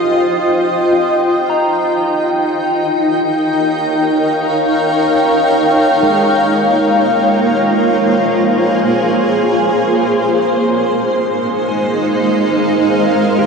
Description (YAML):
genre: ambient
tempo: 53 BPM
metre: 4/4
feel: straight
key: Ab major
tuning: A4 = 440 Hz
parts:
  - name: granular cloud pad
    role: sustained chords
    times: 0.0-13.5 s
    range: Ab3 to G5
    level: -12 LUFS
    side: equal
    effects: built-in reverb, shimmer reverb
  - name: clean electric guitar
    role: arpeggios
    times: 0.0-13.5 s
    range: Ab3 to Bb5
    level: -21 LUFS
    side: equal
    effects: tremolo, ping-pong delay, shimmer reverb
room: wet cathedral reverb, RT60 5.9 s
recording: worn, warbling old tape, cassette tape, warbly pitch drift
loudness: -12 LUFS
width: side -5 dB against mid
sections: 0.0-13.5 A section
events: fade-out on clean electric guitar 0.0-13.5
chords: 0.0 F7(no3); 0.9 Eb7; 5.5 Bbm7; 10.0 Ab69